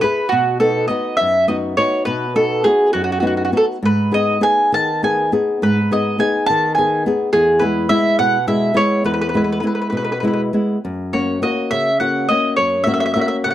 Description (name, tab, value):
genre	italian folk, Italian serenade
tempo	69 BPM (dotted quarters)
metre	6/8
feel	rubato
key	E major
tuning	A4 = 440 Hz
part	mandolin	melody	0.0-13.5 s	F#4 to A5	-17 LUFS	right 1 dB	none
part	flamenco guitar	accompaniment	0.0-13.5 s	E2 to B4	-18 LUFS	left 1 dB	none
room	small room ambience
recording	dry, close 1970s-style studio recording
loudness	-15 LUFS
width	side -12 dB against mid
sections	0.0-13.5 A section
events	none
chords	0.3 B; 3.8 G#m; 7.3 E; 10.8 F#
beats	| 0.31 1.18 | 2.06 2.94 | 3.83 4.72 | 5.61 6.47 | 7.33 8.19 | 9.05 9.93 | 10.82 11.70 | 12.57 13.43